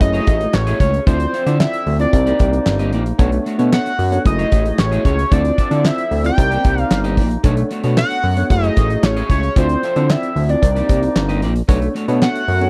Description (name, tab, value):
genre	early-eighties boogie funk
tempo	113 BPM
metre	4/4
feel	straight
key	unclear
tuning	A4 = 440 Hz
part	fat analog lead	melody	0.0-12.7 s	C5 to G5	-23 LUFS	equal	chorus, slapback echo
part	tine electric piano	accompaniment	0.0-12.7 s	A3 to D5	-25 LUFS	equal	none
part	mellow woodwind section	sustained chords	0.0-12.7 s	C3 to G#4	-32 LUFS	equal	none
part	electric guitar at the edge of break-up	riff	0.0-12.7 s	A3 to E5	-29 LUFS	equal	lush chorus
part	fat analog bass	bass	0.0-12.7 s	F#1 to D3	-20 LUFS	equal	none
part	damped 70s drum kit	drums	0.0-12.7 s	handclaps, hi-hat, kick drum, snare drum	-18 LUFS	equal	none
room	studio reverb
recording	dry, close 1970s-style studio recording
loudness	-16 LUFS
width	mono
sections	0.0-12.7 A section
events	none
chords	0.0 F#m9; 1.1 Dm9; 2.1 Cm9; 3.2 Bm9; 4.3 F#m9; 5.3 Dm9; 6.4 Cm9; 7.4 Bm9; 8.5 F#m9; 9.6 Dm9; 10.6 Cm9; 11.7 Bm9